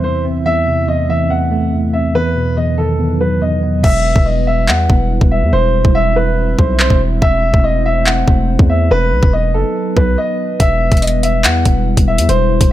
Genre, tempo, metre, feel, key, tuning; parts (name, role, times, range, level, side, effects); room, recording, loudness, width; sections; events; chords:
hip hop, drill; 142 BPM; 4/4; half-time; E harmonic minor; A4 = 440 Hz
dark concert grand piano; melody; 0.0-12.7 s; A4 to F#5; -17 LUFS; equal; low-pass filter
tine electric piano; accompaniment; 0.0-3.9 s; E2 to C4; -16 LUFS; equal; medium stereo tremolo, low-pass filter
dark analog pad; sustained chords; 0.0-12.7 s; E2 to E5; -21 LUFS; equal; chorus
distorted 808-style bass; bass; 3.8-12.7 s; E1 to E2; -15 LUFS; equal; distortion
drill drum kit; drums; 3.8-12.7 s; crash cymbal, handclaps, hi-hat, kick drum; -13 LUFS; equal
light reverb, digital ambience; -11 LUFS; side -13 dB against mid
0.0-3.8 A section; 3.8-12.7 B section
hi-hats muted 3.8-10.6; break 10.2-10.6
0.5 Am/E; 2.1 B/E; 3.8 Em; 5.5 C/E; 7.2 Am/E; 8.9 B/E; 10.6 Em